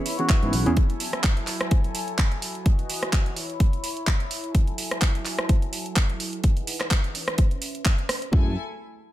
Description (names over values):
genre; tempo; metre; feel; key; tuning
filtered disco house; 127 BPM; 4/4; swing 55% on 16ths; F# dorian; A4 = 440 Hz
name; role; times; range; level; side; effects
overdriven reed electric piano; accompaniment; 0.0-0.7, 8.3-8.5 s; E3 to G#4; -27 LUFS; right 2 dB; fast tremolo, phaser, sidechain pumping, low-pass filter
rich studio string section; sustained chords; 0.0-8.5 s; E3 to B5; -34 LUFS; left 1 dB; sidechain pumping, low-pass filter
direct-recorded clean electric guitar; riff; 0.0-0.5 s; E4 to E5; -36 LUFS; right 2 dB; sidechain pumping, low-pass filter
house drum kit; drums; 0.1-8.3 s; handclaps, hi-hat, rim click; -28 LUFS; right 1 dB; sidechain pumping on hats
muted trumpet section; melody; 0.2-0.7 s; F#4; -32 LUFS; left 1 dB; sidechain pumping, low-pass filter, ping-pong delay
electronic kick drum; drums; 0.3-8.4 s; none; -21 LUFS; equal; none
fingered electric bass; bass; 0.4-0.8, 8.3-8.5 s; B1 to G#2; -25 LUFS; equal; sidechain pumping, low-pass filter
room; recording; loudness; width
digital ambience; none; -22 LUFS; side -14 dB against mid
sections
0.0-8.3 A section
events
filter sweep 0.0-8.3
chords
0.0 C#m7; 0.8 F#m9; 2.7 Emaj9; 3.4 C#m7; 4.5 F#m9; 6.4 Emaj9; 7.1 C#m7; 8.3 F#m9